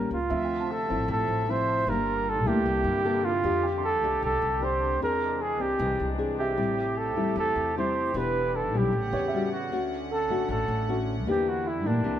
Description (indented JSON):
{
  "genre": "bossa nova",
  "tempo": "153 BPM",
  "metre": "4/4",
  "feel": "straight",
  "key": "D minor",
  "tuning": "A4 = 441 Hz",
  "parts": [
    { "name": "mellow flugelhorn", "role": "melody", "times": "0.0-12.2 s", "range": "D4 to C5", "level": "-27 LUFS", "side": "right 2 dB", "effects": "none" },
    { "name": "nylon-string guitar", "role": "accompaniment", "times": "0.0-12.2 s", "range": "A2 to A4", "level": "-30 LUFS", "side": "left 3 dB", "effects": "none" },
    { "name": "upright bass", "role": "bass", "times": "0.0-12.2 s", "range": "E1 to Bb2", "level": "-32 LUFS", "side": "equal", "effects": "none" },
    { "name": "warm baby grand piano", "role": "accompaniment", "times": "0.3-6.8, 9.1-11.3 s", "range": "A4 to C6", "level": "-38 LUFS", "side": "right 4 dB", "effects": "none" },
    { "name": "pipe organ, strings celeste", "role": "sustained chords", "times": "0.3-12.2 s", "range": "Bb2 to F#5", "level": "-36 LUFS", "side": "left 1 dB", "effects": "none" }
  ],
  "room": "moderate plate reverb, RT60 2.8 s",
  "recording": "minimal, uncompressed stereo recording",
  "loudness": "-24 LUFS",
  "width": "side -10 dB against mid",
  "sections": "0.3-12.2 A section",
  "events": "none",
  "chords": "0.3 Dm9; 1.9 Gm9; 2.7 C13; 3.4 F69; 5.0 E7alt; 6.6 Am7; 8.1 Em7; 8.9 A13; 9.7 Dmaj7; 11.3 Em7b5"
}